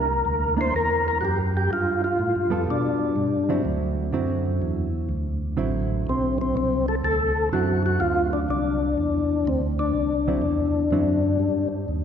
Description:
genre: soul jazz organ trio.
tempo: 124 BPM.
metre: 4/4.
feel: swing 67% on 8ths.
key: unclear.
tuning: A4 = 440 Hz.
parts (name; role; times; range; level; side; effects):
percussive tonewheel organ; melody; 0.0-11.7 s; C4 to C5; -23 LUFS; left 3 dB; slow rotary speaker, chorus vibrato.
hollow-body jazz guitar; accompaniment; 0.0-11.2 s; D3 to A4; -29 LUFS; right 4 dB; none.
tonewheel organ; bass; 0.0-12.0 s; A1 to B2; -26 LUFS; right 1 dB; overdrive, chorus vibrato, slow rotary speaker.
room: wet concert hall reverb, RT60 2.5 s.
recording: recorded in a church or concert hall.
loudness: -21 LUFS.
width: side -8 dB against mid.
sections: 0.0-12.0 A section.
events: none.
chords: 0.0 C9; 1.7 G9; 3.6 D9; 11.4 Eb.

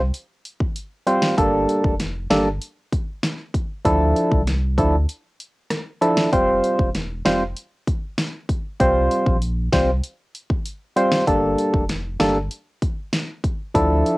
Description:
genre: dancehall.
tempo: 97 BPM.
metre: 4/4.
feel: straight.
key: unclear.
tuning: A4 = 440 Hz.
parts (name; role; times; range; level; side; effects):
saturated sub bass; bass; 0.0-14.0 s; E1 to D2; -23 LUFS; equal; none.
pop drum kit; drums; 0.1-14.2 s; hi-hat, kick drum, rim click, snare drum; -23 LUFS; equal; cassette tape.
percussive organ stab; accompaniment; 1.1-14.2 s; F3 to C5; -18 LUFS; equal; chorus, cassette tape.
room: little or no reverb.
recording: home recording on cassette.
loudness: -19 LUFS.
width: side -21 dB against mid.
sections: 0.0-14.2 A section.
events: break 5.1-6.3.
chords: 0.0 Csus4; 1.4 Gmadd9; 3.9 Dmadd9; 6.3 Fsus2; 8.8 Csus4; 11.3 Gmadd9.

